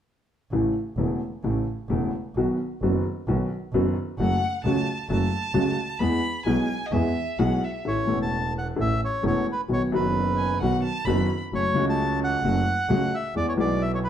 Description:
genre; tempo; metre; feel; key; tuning
tango; 131 BPM; 4/4; rubato; A major; A4 = 440 Hz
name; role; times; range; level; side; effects
warm upright piano; accompaniment; 0.5-14.1 s; E1 to A4; -25 LUFS; left 2 dB; none
clear double bass; bass; 0.5-14.1 s; E1 to E2; -27 LUFS; right 2 dB; none
rich violin; second line; 4.2-11.4 s; D#5 to B5; -30 LUFS; left 1 dB; none
bandoneon; melody; 7.9-14.1 s; B4 to A5; -27 LUFS; right 1 dB; none
room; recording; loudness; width
wet studio reverb, RT60 0.8 s; heard from further back in the room; -22 LUFS; side -10 dB against mid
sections
0.5-7.9 A section; 7.9-14.1 B section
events
none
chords
0.5 A; 2.4 B; 4.2 F#m; 6.0 E; 7.9 A; 9.7 B; 11.5 F#m; 13.3 E

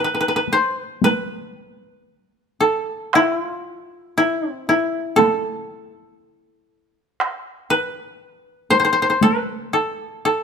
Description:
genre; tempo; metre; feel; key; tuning
japanese traditional, Japanese chamber music; 59 BPM; 4/4; rubato; unclear; A4 = 440 Hz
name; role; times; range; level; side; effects
koto; melody; 0.0-10.4 s; E4 to C5; -18 LUFS; left 1 dB; none
taiko ensemble; percussion; 0.5-9.5 s; none; -21 LUFS; right 2 dB; none
room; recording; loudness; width
light reverb; close, detailed microphones; -18 LUFS; side -6 dB against mid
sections
0.0-10.4 A section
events
none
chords
none

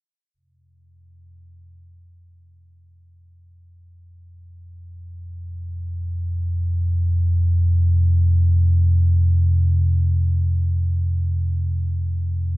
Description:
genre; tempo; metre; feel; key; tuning
ambient; free time; none; none; unclear; A4 = 439 Hz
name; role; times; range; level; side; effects
deep rumbling drone; drone; 4.4-12.6 s; F2 to C3; -18 LUFS; equal; built-in reverb
room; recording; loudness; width
wet cathedral reverb, RT60 5.5 s; dark, warm production; -17 LUFS; side -20 dB against mid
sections
0.4-12.6 A section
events
filter sweep on synth drone 0.4-12.6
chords
0.4 F5

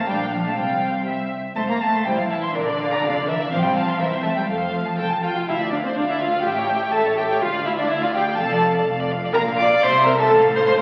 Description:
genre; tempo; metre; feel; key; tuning
quick classical-period movement for string orchestra; 124 BPM; 2/4; straight; F major, D minor from 5.5 s; A4 = 440 Hz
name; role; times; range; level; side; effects
warm studio violin section; melody; 0.0-10.8 s; A4 to C6; -28 LUFS; equal; none
warm chamber violin section; second line; 0.0-10.8 s; C5 to D6; -25 LUFS; equal; none
rich chamber viola section; accompaniment; 0.0-10.8 s; A3 to D5; -25 LUFS; equal; none
rich chamber double bass section; bass; 0.0-10.8 s; F1 to F2; -36 LUFS; equal; none
warm chamber cello section; bass; 0.0-10.8 s; D2 to Bb3; -30 LUFS; equal; none
room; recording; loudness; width
wet scoring stage reverb, RT60 1.6 s; very old 78 rpm record, vinyl crackle, nothing above 7.7 kHz; -21 LUFS; mono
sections
0.0-5.5 A section; 5.5-10.8 B section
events
none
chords
0.1 Gm7/Bb; 0.6 Csus4; 1.1 C; 1.6 F; 2.1 F/A; 2.6 Bb; 3.5 F/A; 4.0 C7; 4.5 F; 5.5 Dm; 6.5 A7; 7.4 Dm; 8.4 Dm/F; 9.3 Bb; 9.8 C; 10.3 F/A

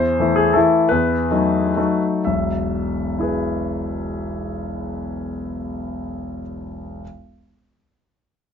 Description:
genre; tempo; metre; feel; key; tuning
classical, romantic triple-time dance for piano with dotted rhythms; 112-175 BPM; 3/4; rubato; E major; A4 = 442 Hz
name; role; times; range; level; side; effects
clear concert grand piano; solo; 0.0-7.0 s; E1 to E5; -19 LUFS; left 2 dB; none
room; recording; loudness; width
light reverb; nothing above 7.6 kHz; -18 LUFS; side -7 dB against mid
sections
0.0-2.3 A section; 2.3-4.9 B section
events
slowing down 0.0-2.3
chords
0.0 A5/E; 0.9 B7/E; 2.3 E

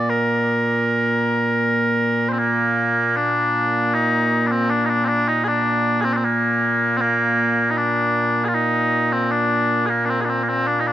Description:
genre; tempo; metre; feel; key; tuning
scottish traditional, Scottish pipe music; 78 BPM; 3/4; straight; Bb major; A4 = 442 Hz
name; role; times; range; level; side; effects
mellow small bagpipes; solo; 0.0-10.9 s; Bb2 to C5; -17 LUFS; equal; none
room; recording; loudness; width
moderate huge ambient reverb, RT60 4.5 s; dark, warm production; -17 LUFS; side -12 dB against mid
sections
0.0-2.4 A section; 2.4-10.9 B section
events
none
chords
none

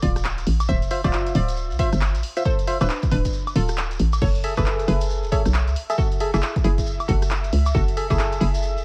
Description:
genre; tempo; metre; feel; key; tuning
UK garage, two-step garage; 136 BPM; 4/4; swing 61% on 16ths; F# minor; A4 = 445 Hz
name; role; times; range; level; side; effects
hollow square pluck; melody; 0.0-8.7 s; D4 to E5; -33 LUFS; equal; lush chorus, digital delay
hollow knocking FM bass; bass; 0.0-8.8 s; D1 to C#2; -24 LUFS; equal; none
electronic kick drum; drums; 0.0-8.2 s; none; -26 LUFS; equal; none
punchy analog drum machine; drums; 0.0-8.6 s; crash cymbal, handclaps, hi-hat, rim click, woodblock; -33 LUFS; equal; none
shekere; percussion; 0.2-8.8 s; none; -42 LUFS; equal; none
percussive organ stab; stabs; 0.9-8.8 s; F4 to E5; -29 LUFS; equal; chorus, phaser
airy breathy pad; sustained chords; 4.2-8.8 s; E5; -39 LUFS; equal; chorus, sidechain pumping
room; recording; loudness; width
digital ambience; vinyl crackle; -22 LUFS; mono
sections
0.0-8.8 A section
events
kick drops out 3.3-4.2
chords
0.0 Dm9; 4.2 F#m9

